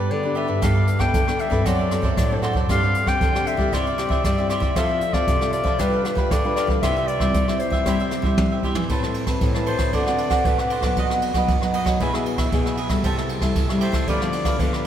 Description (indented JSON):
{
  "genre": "samba and choro",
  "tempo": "116 BPM",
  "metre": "4/4",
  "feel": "straight",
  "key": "C major, A minor from 8.9 s",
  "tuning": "A4 = 439 Hz",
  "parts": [
    { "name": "warm clarinet", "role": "second line", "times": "0.0-14.9 s", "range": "B4 to G5", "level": "-26 LUFS", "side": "left 3 dB", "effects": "none" },
    { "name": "cavaquinho", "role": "accompaniment", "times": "0.0-14.9 s", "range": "D4 to A5", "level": "-27 LUFS", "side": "right 3 dB", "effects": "none" },
    { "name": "nylon-string guitar", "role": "accompaniment", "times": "0.0-14.9 s", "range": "F#2 to B4", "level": "-26 LUFS", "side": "left 1 dB", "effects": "none" },
    { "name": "nylon-string guitar", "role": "bass", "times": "0.0-14.9 s", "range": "F#2 to C4", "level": "-26 LUFS", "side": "equal", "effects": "none" },
    { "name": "jazz brush drum kit", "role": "drums", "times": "0.6-14.9 s", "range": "hi-hat, kick drum, ride cymbal, rim click, toms", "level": "-23 LUFS", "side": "right 1 dB", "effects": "none" }
  ],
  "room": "wet cathedral reverb, RT60 4.9 s",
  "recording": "recorded in a church or concert hall",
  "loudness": "-19 LUFS",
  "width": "side -10 dB against mid",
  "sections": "0.0-8.9 A section; 8.9-14.9 B section",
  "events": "clarinet solo 0.0-8.9; drum fill 8.4-8.9",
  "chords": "0.0 G; 0.6 Gadd9; 1.7 D7/F#; 2.7 Gsus4; 3.7 C; 4.8 F; 5.8 G7; 6.8 C; 8.9 Amadd9; 9.9 D7; 11.0 B; 12.0 E/B; 13.0 Am7/C; 14.1 Bdim/D"
}